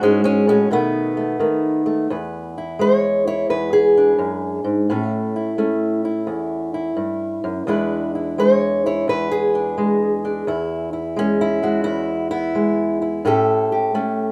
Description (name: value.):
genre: acoustic country blues, solo or duo.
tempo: 86 BPM.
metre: 4/4.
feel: swing 66% on 8ths.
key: E mixolydian.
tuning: A4 = 439 Hz.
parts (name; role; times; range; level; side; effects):
fingerpicked old ladder-braced acoustic guitar; solo; 0.0-14.3 s; E2 to C#5; -20 LUFS; equal; none.
room: light reverb.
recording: rough home demo mix.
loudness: -20 LUFS.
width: mono.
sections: 0.0-2.1 A section; 2.1-14.3 A section.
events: none.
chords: 0.0 N.C.; 0.7 B7; 2.1 E7; 4.9 A7; 7.7 E7; 13.3 A7.